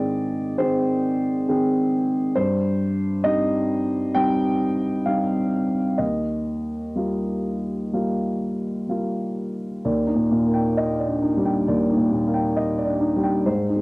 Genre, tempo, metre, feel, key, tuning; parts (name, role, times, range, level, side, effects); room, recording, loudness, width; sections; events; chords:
neoclassical minimalist piano; 61-69 BPM; 4/4; rubato; Eb major; A4 = 437 Hz
warm upright piano; solo; 0.0-13.8 s; Eb2 to G5; -20 LUFS; equal; cassette tape
moderate small room reverb, RT60 0.6 s; home recording on cassette; -20 LUFS; side -25 dB against mid
0.0-9.8 A section; 9.8-13.8 B section
0.0 Ab; 2.4 Cm/G; 6.0 Ebadd9; 9.8 Ebmaj7